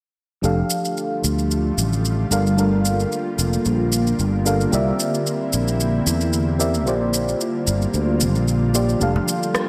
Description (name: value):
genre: sunset chillout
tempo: 112 BPM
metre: 4/4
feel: swing 54% on 16ths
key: F major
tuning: A4 = 440 Hz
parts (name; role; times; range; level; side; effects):
- mellow FM electric piano; accompaniment; 0.4-9.7 s; F3 to F5; -25 LUFS; equal; chorus, digital delay
- ethereal airy pad; sustained chords; 0.9-9.7 s; D3 to F4; -27 LUFS; equal; ensemble chorus, built-in reverb
- sustaining fretless electric bass; bass; 0.4-9.2 s; F1 to E2; -23 LUFS; equal; subtle chorus
- electronic shaker and rim click; drums; 0.4-9.7 s; none; -28 LUFS; equal; gated reverb
- congas; percussion; 9.2-9.3 s; none; -30 LUFS; equal; none
room: wet lush hall reverb, RT60 1.8 s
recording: bright 1980s-style digital production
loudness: -20 LUFS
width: mono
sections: 0.4-9.7 A section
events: none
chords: 0.4 F69; 2.3 Gm7; 4.7 C9; 6.9 Bb6; 9.0 F69